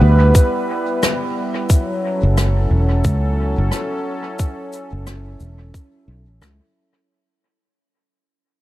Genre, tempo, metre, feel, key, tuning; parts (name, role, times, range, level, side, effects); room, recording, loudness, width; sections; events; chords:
ambient dub; 89 BPM; 4/4; swing 59% on 16ths; A4 = 443 Hz
warm analog pad; sustained chords; 0.0-7.1 s; F#3 to E5; -21 LUFS; right 1 dB; chorus
fingered electric bass; bass; 0.0-6.6 s; E1 to D2; -15 LUFS; equal
electronic kick drum; drums; 0.3-5.9 s; -14 LUFS; equal
shaker and rim click; drums; 0.3-6.6 s; -24 LUFS; left 1 dB; dub echo
light reverb, small room ambience; -15 LUFS; side -15 dB against mid
0.0-7.1 A section
fade-out 0.0-7.1
0.0 Em; 1.7 F#m7